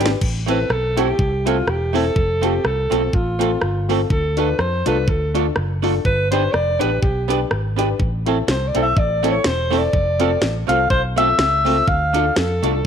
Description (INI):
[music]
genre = ska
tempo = 124 BPM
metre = 4/4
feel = swing 56% on 8ths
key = A minor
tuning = A4 = 444 Hz
[part]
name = archtop guitar, miked and amplified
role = accompaniment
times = 0.0-12.7 s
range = A3 to B4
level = -24 LUFS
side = right 13 dB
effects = none
[part]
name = dark upright piano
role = stabs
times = 0.0-12.8 s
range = C4 to B4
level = -25 LUFS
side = left 12 dB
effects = none
[part]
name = fingered electric bass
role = bass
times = 0.0-12.8 s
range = E1 to F2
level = -22 LUFS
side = equal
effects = none
[part]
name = drum and bass drum kit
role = drums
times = 0.0-12.7 s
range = crash cymbal, hi-hat, kick drum, rim click, snare drum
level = -22 LUFS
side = equal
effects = none
[part]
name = breathy alto saxophone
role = melody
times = 0.5-12.9 s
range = F4 to F5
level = -20 LUFS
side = equal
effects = none
[sound]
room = light reverb, digital ambience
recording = 1960s-style stereo with parts hard left and right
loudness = -16 LUFS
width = side -8 dB against mid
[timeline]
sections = 0.2-12.9 A section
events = drum fill 0.0; alto saxophone solo 0.2-12.9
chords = 0.2 Am; 2.2 F; 4.1 Dm; 6.0 G; 8.0 Am; 9.9 F; 11.9 Dm